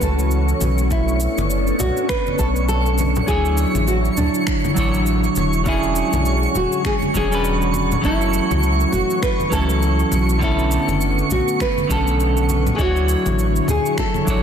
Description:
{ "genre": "sunset chillout", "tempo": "101 BPM", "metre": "4/4", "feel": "swing 58% on 16ths", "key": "unclear", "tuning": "A4 = 440 Hz", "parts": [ { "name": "nylon-string guitar", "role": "melody", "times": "0.0-14.4 s", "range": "D4 to B4", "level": "-24 LUFS", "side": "equal", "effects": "tape echo" }, { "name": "soft string machine", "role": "sustained chords", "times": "0.0-14.4 s", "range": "D3 to C#5", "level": "-25 LUFS", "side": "equal", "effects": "ensemble chorus" }, { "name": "warm sub bass", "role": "bass", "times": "0.0-14.4 s", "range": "E1 to D2", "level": "-20 LUFS", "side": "equal", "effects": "tube saturation" }, { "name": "electronic kick drum", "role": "drums", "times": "0.0-14.4 s", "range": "none", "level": "-25 LUFS", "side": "equal", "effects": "none" }, { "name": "electronic shaker and finger snaps", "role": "drums", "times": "0.0-14.4 s", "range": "none", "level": "-30 LUFS", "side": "right 1 dB", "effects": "soft clipping on snare" }, { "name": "twinkling granular texture", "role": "texture", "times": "0.0-14.4 s", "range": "C#6", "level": "-27 LUFS", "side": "right 2 dB", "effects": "built-in reverb" }, { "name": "congas", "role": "percussion", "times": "0.6-14.2 s", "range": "none", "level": "-27 LUFS", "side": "left 3 dB", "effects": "none" }, { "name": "clean electric guitar", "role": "accompaniment", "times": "3.3-14.4 s", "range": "D3 to C#5", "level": "-23 LUFS", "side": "right 1 dB", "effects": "auto-pan, tape echo" } ], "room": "moderate digital room reverb, RT60 1.2 s", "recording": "dense, heavily limited modern master", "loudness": "-16 LUFS", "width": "side -8 dB against mid", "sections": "0.0-14.4 A section", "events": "none", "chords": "0.0 F#m7; 0.9 Bm9; 3.3 Dmaj9; 5.7 E13; 8.0 F#m7; 10.4 Bm9; 12.8 Dmaj9", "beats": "0.32 | 0.91 1.50 2.10 2.69 | 3.29 3.88 4.48 5.07 | 5.66 6.26 6.85 7.45 | 8.04 8.63 9.23 9.82 | 10.42 11.01 11.60 12.20 | 12.79 13.39 13.98" }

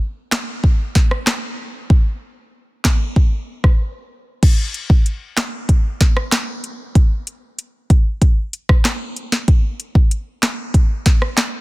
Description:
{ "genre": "dancehall", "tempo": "95 BPM", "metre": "4/4", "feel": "straight", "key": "none", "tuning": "none", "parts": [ { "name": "afro-pop drum kit", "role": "drums", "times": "0.3-11.5 s", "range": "crash cymbal, handclaps, hi-hat, kick drum, rim click, snare drum", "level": "-14 LUFS", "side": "equal", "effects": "none" } ], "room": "little or no reverb", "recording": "dense, heavily limited modern master", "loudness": "-15 LUFS", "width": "side -21 dB against mid", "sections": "0.0-4.4 A section; 4.4-11.6 B section", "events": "break 3.8-4.4", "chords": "none", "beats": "0.01 0.64 1.27 | 1.90 2.53 3.17 3.80 | 4.43 5.06 5.69 6.32 | 6.95 7.59 8.22 8.85 | 9.48 10.11 10.74 11.38" }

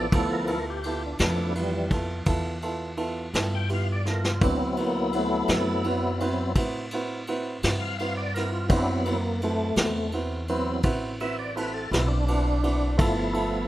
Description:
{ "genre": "slow blues", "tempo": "56 BPM (dotted quarters)", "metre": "12/8", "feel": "straight", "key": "unclear", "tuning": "A4 = 438 Hz", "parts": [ { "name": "warm upright piano", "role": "accompaniment", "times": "0.0-13.6 s", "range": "B3 to B4", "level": "-31 LUFS", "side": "right 2 dB", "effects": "none" }, { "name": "tonewheel organ", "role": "sustained chords", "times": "0.0-13.7 s", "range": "E3 to G5", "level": "-28 LUFS", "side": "equal", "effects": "overdrive, chorus vibrato, slow rotary speaker" }, { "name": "upright bass", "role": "bass", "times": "0.0-13.7 s", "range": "G1 to A2", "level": "-30 LUFS", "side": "equal", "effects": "none" }, { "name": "vintage brush drum kit", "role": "drums", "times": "0.1-13.5 s", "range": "kick drum, ride cymbal, snare drum", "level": "-29 LUFS", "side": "equal", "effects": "none" } ], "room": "small room ambience", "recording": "rough home demo mix", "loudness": "-24 LUFS", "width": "side -15 dB against mid", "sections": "0.0-13.7 A section", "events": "tonewheel organ solo 0.0-13.7; drum fill 4.1-4.4", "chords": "0.0 G13; 4.4 D13; 13.0 G13", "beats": "| 0.12 1.20 2.27 3.34 | 4.41 5.49 6.56 7.63 | 8.70 9.78 10.85 11.92 | 12.99" }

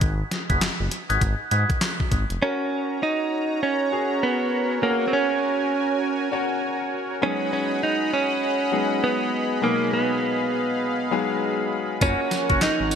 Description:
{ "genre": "R&B, new jack swing", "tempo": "100 BPM", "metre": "4/4", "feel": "swing 61% on 16ths", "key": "F# major", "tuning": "A4 = 441 Hz", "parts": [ { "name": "smooth synth bass", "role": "bass", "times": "0.0-2.4, 12.0-13.0 s", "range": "E#1 to G#2", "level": "-25 LUFS", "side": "equal", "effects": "none" }, { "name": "crisp 8-bit digital drum machine", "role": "drums", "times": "0.0-2.4, 12.0-13.0 s", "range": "handclaps, hi-hat, kick drum, snare drum, tambourine", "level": "-24 LUFS", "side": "equal", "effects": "gated reverb" }, { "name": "percussive tonewheel organ", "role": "stabs", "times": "0.5-1.7, 12.0-12.6 s", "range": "C#4 to C#5", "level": "-27 LUFS", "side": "equal", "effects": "slow rotary speaker, digital delay" }, { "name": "direct-recorded clean electric guitar", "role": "melody", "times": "2.4-13.0 s", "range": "A#3 to D#4", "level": "-23 LUFS", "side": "right 3 dB", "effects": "digital delay" }, { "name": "clear baby grand piano", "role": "accompaniment", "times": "2.4-13.0 s", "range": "B2 to C#5", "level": "-28 LUFS", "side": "left 5 dB", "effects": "none" }, { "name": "warm analog pad", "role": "sustained chords", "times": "2.4-13.0 s", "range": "F#4 to C#6", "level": "-28 LUFS", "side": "equal", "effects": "chorus, tremolo" } ], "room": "moderate plate reverb, RT60 3.1 s", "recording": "bright 1980s-style digital production", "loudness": "-21 LUFS", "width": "side -7 dB against mid", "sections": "0.0-2.4 A section; 2.4-13.0 B section", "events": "none", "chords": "0.0 G#m7; 2.4 F#; 7.2 G#m7; 12.0 F#", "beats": "| 0.01 0.61 1.21 1.81 | 2.41 3.01 3.61 4.21 | 4.81 5.41 6.01 6.61 | 7.21 7.81 8.41 9.01 | 9.61 10.21 10.81 11.41 | 12.01 12.61" }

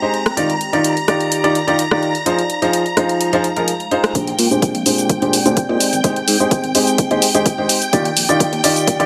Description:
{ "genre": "piano house", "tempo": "127 BPM", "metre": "4/4", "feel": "straight", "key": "unclear", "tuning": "A4 = 440 Hz", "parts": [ { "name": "string machine, violins", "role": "sustained chords", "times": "0.0-9.1 s", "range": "G5 to Bb5", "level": "-25 LUFS", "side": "equal", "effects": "ensemble chorus, sidechain pumping" }, { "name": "clear upright piano", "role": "riff", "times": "0.0-9.1 s", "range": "Bb2 to D5", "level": "-20 LUFS", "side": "equal", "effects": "sidechain pumping, low-pass filter, dub echo" }, { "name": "warbly tape-like pad", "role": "texture", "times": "0.0-9.1 s", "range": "Ab3 to G5", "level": "-28 LUFS", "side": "equal", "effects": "chorus, built-in reverb, sidechain pumping" }, { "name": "punchy analog drum machine", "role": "drums", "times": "0.1-9.1 s", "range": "hi-hat, rim click, shaker", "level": "-21 LUFS", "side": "equal", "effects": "overdrive, high-pass filter on hats, high-pass filter on snare, high-pass filter on perc" }, { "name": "modern bright fingered electric bass", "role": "bass", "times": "4.2-9.1 s", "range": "Ab1 to Bb2", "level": "-24 LUFS", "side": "equal", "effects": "sidechain pumping, high-pass filter" }, { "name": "electronic kick drum", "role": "drums", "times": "4.2-9.0 s", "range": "none", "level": "-20 LUFS", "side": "equal", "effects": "high-pass filter on kick" } ], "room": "light reverb", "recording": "none", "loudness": "-16 LUFS", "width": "mono", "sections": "0.0-4.2 A section; 4.2-9.1 B section", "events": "build-up 4.2-9.1; filter sweep on upright piano 4.2-9.1", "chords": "0.4 Ebmaj9; 2.3 Fm7; 4.2 Bb13; 5.8 Abmaj7; 7.9 Ebmaj9", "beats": "| 0.37 0.84 1.32 1.79 | 2.26 2.73 3.21 3.68 | 4.15 4.62 5.10 5.57 | 6.04 6.51 6.99 7.46 | 7.93 8.40 8.88" }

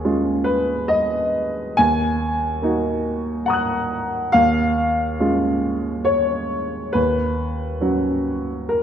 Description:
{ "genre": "neoclassical minimalist piano", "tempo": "69 BPM", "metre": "3/4", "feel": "rubato", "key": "unclear", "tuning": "A4 = 442 Hz", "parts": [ { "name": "warm upright piano", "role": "solo", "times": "0.0-8.8 s", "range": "Eb2 to Gb6", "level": "-18 LUFS", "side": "equal", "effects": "none" } ], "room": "wet scoring stage reverb, RT60 1.4 s", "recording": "recorded in a church or concert hall", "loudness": "-18 LUFS", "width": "side -9 dB against mid", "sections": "0.0-8.8 A section", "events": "none", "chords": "0.0 Dbadd9/Eb; 1.8 Ebm; 4.4 Dbadd9/Eb; 7.0 Bsus2/Eb", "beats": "0.05 0.90 | 1.78 2.64 3.50 | 4.35 5.21 6.09 | 6.96 7.83 8.71" }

